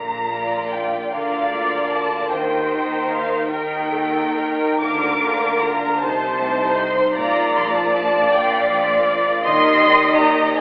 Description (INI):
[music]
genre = classical, slow romantic movement for symphony orchestra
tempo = 44-55 BPM (dotted quarters)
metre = 6/8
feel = rubato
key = Bb major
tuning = A4 = 437 Hz
[part]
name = warm studio violin section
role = melody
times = 0.0-10.6 s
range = F5 to D6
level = -24 LUFS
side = equal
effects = none
[part]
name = concert harp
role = arpeggios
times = 0.0-10.6 s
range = Bb2 to D5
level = -30 LUFS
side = equal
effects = none
[part]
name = rich symphonic cello section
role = bass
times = 0.0-10.4 s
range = Bb2 to Eb3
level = -28 LUFS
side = equal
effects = none
[part]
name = rich symphonic double bass section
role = bass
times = 0.0-10.6 s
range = Bb1 to Eb2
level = -37 LUFS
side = equal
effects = none
[part]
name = warm symphonic violin section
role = second line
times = 0.3-10.6 s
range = Eb4 to D5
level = -26 LUFS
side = equal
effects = none
[part]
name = rich symphonic viola section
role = accompaniment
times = 1.1-10.6 s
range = A4 to Eb5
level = -24 LUFS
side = equal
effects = none
[sound]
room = moderate recital hall reverb, RT60 1.4 s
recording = telephone sound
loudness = -19 LUFS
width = mono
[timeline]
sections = 0.0-10.6 A section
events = none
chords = 0.0 Bb; 1.1 Bb/D; 2.3 Eb; 4.8 Bb/D; 6.0 Adim/C; 7.2 Bb; 9.5 Ebmaj7